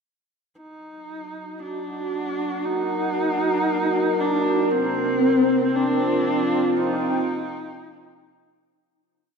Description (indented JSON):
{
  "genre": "ambient",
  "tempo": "58 BPM",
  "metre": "4/4",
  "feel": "straight",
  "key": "Eb harmonic minor",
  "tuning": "A4 = 440 Hz",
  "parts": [
    { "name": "warm horsehead fiddle", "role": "melody", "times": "0.6-8.3 s", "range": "C4 to Eb4", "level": "-24 LUFS", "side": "equal", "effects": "tape echo" },
    { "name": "sweeping resonant pad", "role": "sustained chords", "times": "0.6-8.9 s", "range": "C4 to G5", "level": "-22 LUFS", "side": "equal", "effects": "chorus" }
  ],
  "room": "wet cathedral reverb, RT60 6.2 s",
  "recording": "none",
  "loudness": "-20 LUFS",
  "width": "side -5 dB against mid",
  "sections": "0.6-8.9 A section",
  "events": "fade-in on analog synth pad 0.6-8.9; fade-in on horsehead fiddle 0.6-8.9; fade-out 4.7-8.9",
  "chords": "0.6 Ebm; 4.7 Cmadd9",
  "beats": "| 0.59 1.62 2.65 3.69 | 4.72 5.76 6.79 7.83"
}